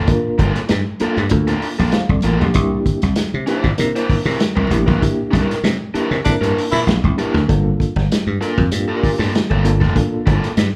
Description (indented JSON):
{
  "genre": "funk",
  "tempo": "97 BPM",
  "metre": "4/4",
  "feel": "straight",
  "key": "G dorian",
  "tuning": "A4 = 443 Hz",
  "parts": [
    { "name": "raw garage guitar", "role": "accompaniment", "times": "0.0-10.5 s", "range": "Bb3 to C5", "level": "-25 LUFS", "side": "equal", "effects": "overdrive" },
    { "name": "dry thumbed slap bass", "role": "bass", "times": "0.0-10.7 s", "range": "F1 to C3", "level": "-21 LUFS", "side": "equal", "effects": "none" },
    { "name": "mellow reed electric piano", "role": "stabs", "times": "0.1-10.4 s", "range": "A3 to F5", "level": "-24 LUFS", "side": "equal", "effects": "fast tremolo" },
    { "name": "vintage drum kit", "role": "drums", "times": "0.1-10.7 s", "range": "hi-hat, kick drum, snare drum", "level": "-22 LUFS", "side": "equal", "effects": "none" },
    { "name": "breathy baritone saxophone", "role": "second line", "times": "6.2-6.8 s", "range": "D4 to E4", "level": "-24 LUFS", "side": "equal", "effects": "none" }
  ],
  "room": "light reverb",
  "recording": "band playing live in one room",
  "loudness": "-17 LUFS",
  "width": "mono",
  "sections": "0.0-10.8 A section",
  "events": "band accent 5.0-7.5",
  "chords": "0.0 Gm9; 2.6 C9; 7.5 Gm9"
}